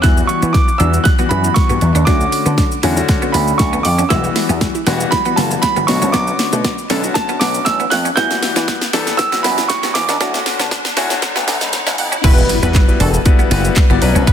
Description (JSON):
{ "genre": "dance-pop", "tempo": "118 BPM", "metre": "4/4", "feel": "straight", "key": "E dorian", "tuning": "A4 = 439 Hz", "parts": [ { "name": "warm concert grand piano", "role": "melody", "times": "0.0-11.9 s", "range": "A5 to G6", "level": "-19 LUFS", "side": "right 4 dB", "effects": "dub echo" }, { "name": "clear concert grand piano", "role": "accompaniment", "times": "0.0-14.3 s", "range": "D3 to D5", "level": "-20 LUFS", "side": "left 7 dB", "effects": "sidechain pumping" }, { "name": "wide unison pluck", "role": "arpeggios", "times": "0.0-12.2 s", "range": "B3 to F#5", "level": "-29 LUFS", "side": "right 4 dB", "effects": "none" }, { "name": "electric guitar at the edge of break-up", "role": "riff", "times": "0.0-14.3 s", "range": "A3 to E4", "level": "-25 LUFS", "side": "right 3 dB", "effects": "wide subtle chorus" }, { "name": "slap bass with an envelope filter", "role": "bass", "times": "0.0-14.3 s", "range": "E1 to E3", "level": "-18 LUFS", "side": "equal", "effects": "sidechain pumping" }, { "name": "pop drum kit", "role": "drums", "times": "0.0-14.3 s", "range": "crash cymbal, handclaps, hi-hat, kick drum, shaker, snare drum", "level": "-16 LUFS", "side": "equal", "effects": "none" }, { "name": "riser and impact", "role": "sound effects", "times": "6.5-14.3 s", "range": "none", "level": "-26 LUFS", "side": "equal", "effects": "none" }, { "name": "analog pluck", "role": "melody", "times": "12.2-14.3 s", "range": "A4 to B4", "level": "-24 LUFS", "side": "equal", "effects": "chorus, sidechain pumping, dub echo" } ], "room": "light reverb, digital ambience", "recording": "dense, heavily limited modern master, high-pass filter", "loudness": "-12 LUFS", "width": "side -9 dB against mid", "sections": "0.0-12.2 A section; 12.2-14.3 B section", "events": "build-up 0.0-12.2; drum fill 0.0-12.2; filter sweep 0.0-12.2; drop 12.2-14.3; impact 12.2-14.3", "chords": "0.0 Emadd9; 2.1 Dmaj7; 4.1 Emadd9; 5.9 Bmadd9; 8.2 Emadd9; 10.2 Dmaj7; 12.2 Emadd9" }